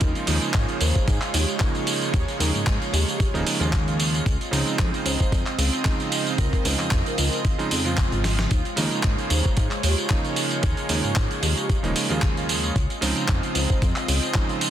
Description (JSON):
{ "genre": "nu-disco, nu disco", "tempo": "113 BPM", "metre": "4/4", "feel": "swing 55% on 16ths", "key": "unclear", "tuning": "A4 = 440 Hz", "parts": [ { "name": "clear electric grand piano", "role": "accompaniment", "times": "0.0-14.7 s", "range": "Db3 to F4", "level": "-28 LUFS", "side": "right 3 dB", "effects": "sidechain pumping, dub echo" }, { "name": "lush unison pad", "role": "sustained chords", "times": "0.0-14.7 s", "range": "Ab3 to Eb5", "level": "-30 LUFS", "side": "right 1 dB", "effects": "chorus, sidechain pumping" }, { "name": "chorused synth bass", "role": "bass", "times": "0.0-14.2 s", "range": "Eb1 to Ab2", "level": "-25 LUFS", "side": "equal", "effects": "sidechain pumping" }, { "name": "dusty soul sampler-style drum kit", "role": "drums", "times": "0.0-14.7 s", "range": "handclaps, hi-hat, snare drum, tambourine", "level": "-26 LUFS", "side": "right 1 dB", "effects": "none" }, { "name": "electronic kick drum", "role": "drums", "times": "0.0-14.5 s", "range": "none", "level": "-23 LUFS", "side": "equal", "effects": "none" }, { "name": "vibraphone with hard mallets", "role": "melody", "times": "0.8-13.8 s", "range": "G4 to C5", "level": "-37 LUFS", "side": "right 1 dB", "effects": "vintage 12-bit sampler grit, dub echo" } ], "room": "light reverb, digital ambience", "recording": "dense, heavily limited modern master", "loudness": "-20 LUFS", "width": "side -11 dB against mid", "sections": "0.0-14.7 A section", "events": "drum fill 8.2", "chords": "0.0 Eb9sus4; 4.3 Dbmaj9; 8.5 Eb9sus4; 12.8 Dbmaj9" }